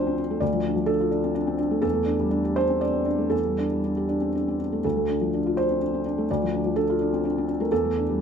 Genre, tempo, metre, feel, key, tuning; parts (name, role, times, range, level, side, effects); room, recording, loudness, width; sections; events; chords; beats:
neoclassical minimalist piano; 125 BPM; 3/4; rubato; D minor; A4 = 441 Hz
felt-muted upright piano; solo; 0.0-8.2 s; D2 to D5; -22 LUFS; equal
moderate studio reverb, RT60 0.8 s; -22 LUFS; side -7 dB against mid
0.0-8.2 A section
0.0 Dm; 1.8 A7sus4/E; 4.8 Dm; 7.7 A7sus4/E
| 0.41 0.88 1.36 | 1.84 2.32 2.81 | 3.33 3.83 4.34 | 4.84 5.33 5.81 | 6.28 6.76 7.24 | 7.71 8.19